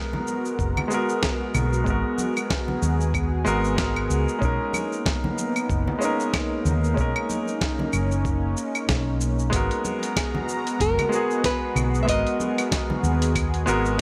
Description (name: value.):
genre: sunset chillout.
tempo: 94 BPM.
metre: 4/4.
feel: swing 57% on 16ths.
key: unclear.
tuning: A4 = 440 Hz.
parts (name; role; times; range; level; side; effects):
clear grand piano; accompaniment; 0.0-14.0 s; G#3 to A#4; -30 LUFS; equal; digital delay.
lush unison pad; sustained chords; 0.1-14.0 s; G#3 to A#5; -31 LUFS; equal; chorus.
congas; percussion; 0.1-13.0 s; none; -35 LUFS; equal; none.
dusty soul sampler-style drum kit; drums; 0.3-14.0 s; claves, hi-hat, shaker, snare drum; -32 LUFS; equal; studio reverb.
hollow-body short-scale fingered electric bass; bass; 0.6-14.0 s; F#1 to D#2; -26 LUFS; equal; none.
electronic kick drum; drums; 0.6-13.5 s; none; -31 LUFS; equal; studio reverb.
flamenco guitar; melody; 10.2-14.0 s; G#4 to E5; -29 LUFS; equal; delay.
room: moderate lush hall reverb, RT60 1.8 s.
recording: none.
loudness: -24 LUFS.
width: mono.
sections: 0.0-14.0 A section.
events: none.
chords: 0.0 Bmaj13.